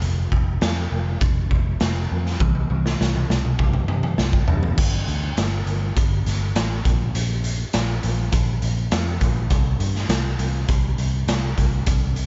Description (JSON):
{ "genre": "classic rock", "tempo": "101 BPM", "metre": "4/4", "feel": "straight", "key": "unclear", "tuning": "A4 = 439 Hz", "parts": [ { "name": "picked electric bass", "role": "bass", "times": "0.0-12.3 s", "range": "F1 to C3", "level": "-25 LUFS", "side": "equal", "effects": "none" }, { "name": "raw garage drum kit", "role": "drums", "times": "0.0-12.3 s", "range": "crash cymbal, hi-hat, kick drum, snare drum, toms", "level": "-24 LUFS", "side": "equal", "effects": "none" } ], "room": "little or no reverb", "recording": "nothing above 7.7 kHz", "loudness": "-22 LUFS", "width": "mono", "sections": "0.0-4.8 A section; 4.8-12.3 B section", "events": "drum fill 2.4-4.8", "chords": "none" }